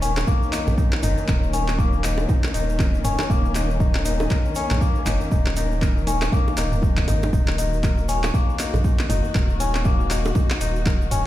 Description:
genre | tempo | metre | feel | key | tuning
afro house | 119 BPM | 4/4 | swing 58% on 16ths | Eb minor pentatonic | A4 = 440 Hz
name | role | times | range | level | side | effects
dark studio string section | sustained chords | 0.0-11.3 s | Eb3 to Gb4 | -29 LUFS | left 2 dB | sidechain pumping
kora | arpeggios | 0.0-11.3 s | Bb3 to Db5 | -28 LUFS | left 5 dB | sidechain pumping, ping-pong delay
warm sub bass | bass | 0.0-11.2 s | Eb1 to Bb1 | -24 LUFS | equal | sidechain pumping
deep house drum kit | drums | 0.0-11.2 s | handclaps, hi-hat, toms | -28 LUFS | right 1 dB | small room ambience
egg shaker | percussion | 0.0-11.2 s | none | -39 LUFS | right 6 dB | none
bongos | percussion | 0.2-11.0 s | none | -32 LUFS | right 3 dB | none
electronic kick drum | drums | 0.3-11.0 s | none | -20 LUFS | equal | small room ambience
room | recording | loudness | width
small room reverb | played on a big sound system in a bare room, stone room reverb | -19 LUFS | side -14 dB against mid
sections
0.0-11.3 A section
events
none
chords
0.0 Ebm

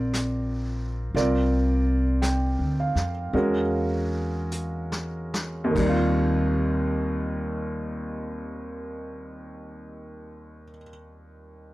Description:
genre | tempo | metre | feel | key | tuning
jazz ballad | 47-59 BPM | 4/4 | swing 67% on 8ths | Eb major | A4 = 440 Hz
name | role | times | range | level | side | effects
warm upright piano | accompaniment | 0.0-11.7 s | Eb2 to G5 | -27 LUFS | right 1 dB | none
upright bass | bass | 0.0-10.7 s | Bb1 to F2 | -27 LUFS | left 1 dB | none
vintage brush drum kit | drums | 0.1-6.2 s | brushed snare drum, crash cymbal, hi-hat, kick drum, snare drum | -34 LUFS | left 1 dB | none
room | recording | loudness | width
little or no reverb | dry, close 1970s-style studio recording | -23 LUFS | side -18 dB against mid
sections
0.0-5.8 A section; 5.8-10.9 B section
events
slowing down 0.0-5.8; drum fill 4.5-5.8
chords
0.0 Bb; 1.2 C9sus4; 3.3 Eadd9; 5.8 Eb69

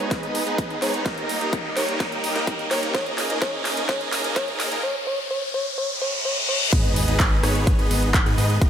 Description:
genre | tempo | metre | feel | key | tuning
EDM, festival progressive house | 127 BPM | 4/4 | straight | G# minor | A4 = 440 Hz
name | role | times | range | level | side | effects
rich studio string section | sustained chords | 0.0-8.7 s | D#3 to D#4 | -32 LUFS | right 2 dB | sidechain pumping
supersaw chords | riff | 0.0-8.7 s | A#3 to F#5 | -26 LUFS | equal | sidechain pumping, low-pass filter, tape echo
fat analog bass | bass | 0.0-8.7 s | D#1 to G#2 | -28 LUFS | equal | none
riser, reverse cymbal and sub drop | sound effects | 0.3-8.6 s | none | -28 LUFS | left 1 dB | none
big-room dance drum kit | drums | 0.1-8.7 s | crash cymbal, handclaps, hi-hat, rim click, snare drum | -28 LUFS | equal | overdrive, high-pass filter on hats, studio reverb, high-pass filter on snare, high-pass filter on cymbals
electronic kick drum | drums | 0.1-8.7 s | none | -22 LUFS | equal | overdrive, studio reverb
bell-like FM electric piano | melody | 0.8-6.6 s | C#5 | -29 LUFS | equal | chorus, tape echo
room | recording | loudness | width
moderate lush hall reverb, RT60 2.3 s | high-pass filter | -20 LUFS | side -9 dB against mid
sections
0.0-6.7 A section; 6.7-8.7 B section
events
build-up 0.0-6.7; drum fill 0.0-4.8; filter sweep 0.0-6.7; riser 0.3-6.7; reverse cymbal 5.8-6.7; drop 6.7-8.7; impact 6.7-8.6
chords
0.0 G#m; 1.1 D#; 2.9 A#dim; 4.8 N.C.; 6.7 G#m

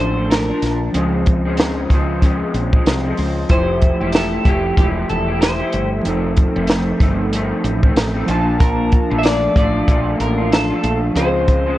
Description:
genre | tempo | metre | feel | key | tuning
indie pop, bedroom pop | 94 BPM | 4/4 | swing 60% on 16ths | F major | A4 = 440 Hz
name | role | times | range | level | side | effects
electric guitar through a small old amp | melody | 0.0-11.8 s | G4 to E5 | -22 LUFS | equal | wide subtle chorus
electric guitar through a small old amp | accompaniment | 0.0-11.8 s | F2 to G4 | -21 LUFS | left 1 dB | analog chorus, warbly pitch drift
warbly lo-fi synth keys | accompaniment | 0.0-11.8 s | F3 to A5 | -23 LUFS | right 1 dB | chorus
woody fretless electric bass | bass | 0.0-11.8 s | E1 to Db2 | -22 LUFS | equal | none
compact cocktail drum kit | drums | 0.3-11.7 s | hi-hat, kick drum, snare drum | -17 LUFS | equal | vintage 12-bit sampler grit
room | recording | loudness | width
light reverb, small room ambience | worn, warbling old tape, cassette tape, warbly pitch drift | -14 LUFS | side -15 dB against mid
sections
0.0-11.8 A section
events
none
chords
0.0 Bbmaj7; 0.9 Dbmaj7; 3.5 Fmaj9; 6.1 F7; 8.3 Bbmaj7; 11.2 Dbmaj7

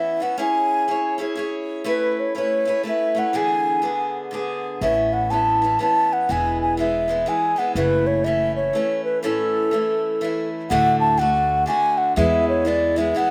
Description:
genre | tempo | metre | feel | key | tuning
celtic folk, Celtic waltz | 122 BPM | 3/4 | swing 63% on 8ths | A major | A4 = 440 Hz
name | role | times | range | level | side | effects
mellow baroque flute | melody | 0.0-13.3 s | A4 to A5 | -22 LUFS | equal | slapback echo
picked steel-string acoustic guitar | accompaniment | 0.0-13.3 s | D2 to C#5 | -27 LUFS | equal | slapback echo
upright bass | bass | 4.8-13.1 s | E1 to E2 | -29 LUFS | equal | none
room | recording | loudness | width
little or no reverb | recorded outdoors, with no room sound | -21 LUFS | mono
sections
0.0-10.7 A section; 10.7-13.3 B section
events
none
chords
0.4 C#m; 1.9 Aadd9; 3.3 E7; 4.8 Aadd9; 6.3 E; 7.8 F#m7; 9.2 A; 10.7 D; 12.2 E

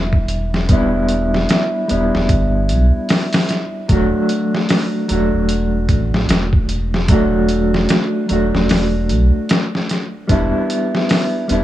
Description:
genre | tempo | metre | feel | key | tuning
trip hop | 75 BPM | 4/4 | swing 60% on 16ths | unclear | A4 = 440 Hz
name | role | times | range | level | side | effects
mellow electric guitar | accompaniment | 0.0-11.6 s | F#3 to F#4 | -17 LUFS | equal | tremolo, tape echo
warm sub bass | bass | 0.0-11.6 s | E1 to B1 | -18 LUFS | equal | none
trip hop sampler-style drum kit | drums | 0.1-11.6 s | hi-hat, kick drum, snare drum | -17 LUFS | equal | none
room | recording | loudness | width
little or no reverb | worn, warbling old tape, cassette tape, warbly pitch drift, small room ambience | -14 LUFS | side -13 dB against mid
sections
0.0-11.6 A section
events
none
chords
0.0 Em7; 3.9 D/E; 10.3 Em7

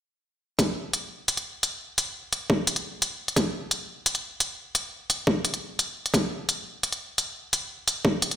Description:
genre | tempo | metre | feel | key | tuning
half-time drum and bass | 173 BPM | 4/4 | half-time | none | none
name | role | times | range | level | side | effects
electronic hi-hat | drums | 0.6-8.4 s | none | -26 LUFS | equal | overdrive
electronic kick drum | drums | 0.6-8.1 s | none | -22 LUFS | equal | overdrive, high-pass filter on kick
room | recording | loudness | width
light reverb, digital ambience | played on a big sound system in a bare room, stone room reverb | -25 LUFS | side -11 dB against mid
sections
0.6-8.4 A section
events
none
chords
none

